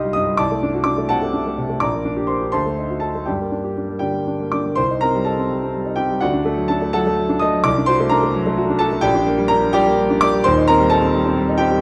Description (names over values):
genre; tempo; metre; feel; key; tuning
classical, virtuoso piano study; 78-88 BPM (dotted quarters); 6/8; rubato; G minor; A4 = 439 Hz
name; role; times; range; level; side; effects
warm grand piano; solo; 0.0-11.8 s; Eb1 to F6; -19 LUFS; equal; none
room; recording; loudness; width
moderate recital hall reverb, RT60 1.4 s; close, detailed microphones; -19 LUFS; mono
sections
0.0-4.8 A section; 4.8-11.8 B section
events
none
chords
0.4 D7/C; 1.8 Gm/Bb; 2.5 D7b9; 3.3 Gm; 4.8 Cm; 6.2 D; 7.6 D7/C; 9.0 Gm/Bb; 10.4 Cm/Eb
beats
| 0.39 1.09 | 1.81 2.52 | 3.27 4.02 | 4.77 5.50 | 6.22 6.93 | 7.65 8.35 | 9.04 9.74 | 10.44 11.13